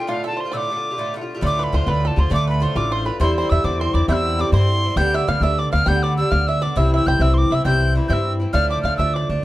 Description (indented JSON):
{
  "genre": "celtic folk, Celtic slide",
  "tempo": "135 BPM (dotted quarters)",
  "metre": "12/8",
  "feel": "straight",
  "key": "D dorian",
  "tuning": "A4 = 440 Hz",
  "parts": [
    { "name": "tin whistle", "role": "melody", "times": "0.0-9.3 s", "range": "F5 to G6", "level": "-23 LUFS", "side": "equal", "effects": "none" },
    { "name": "bluegrass banjo", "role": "second line", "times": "0.0-9.3 s", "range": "F4 to G5", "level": "-28 LUFS", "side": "right 2 dB", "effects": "none" },
    { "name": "Irish bouzouki", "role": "accompaniment", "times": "0.0-9.4 s", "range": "G2 to F4", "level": "-24 LUFS", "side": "equal", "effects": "none" },
    { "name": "upright bass", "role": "bass", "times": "1.4-9.4 s", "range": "A1 to G2", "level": "-19 LUFS", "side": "equal", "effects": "none" }
  ],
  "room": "light reverb",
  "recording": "dark, warm production",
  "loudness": "-17 LUFS",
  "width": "side -16 dB against mid",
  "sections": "0.0-1.4 A section; 1.4-9.4 B section",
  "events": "none",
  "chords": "0.0 Dm; 3.2 Cadd9/E; 5.0 G/D; 6.8 C; 8.5 Dm",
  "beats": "0.08 0.53 0.97 | 1.42 1.87 2.31 2.76 | 3.20 3.65 4.09 4.54 | 4.98 5.43 5.87 6.32 | 6.76 7.21 7.65 8.10 | 8.54 8.99 9.43"
}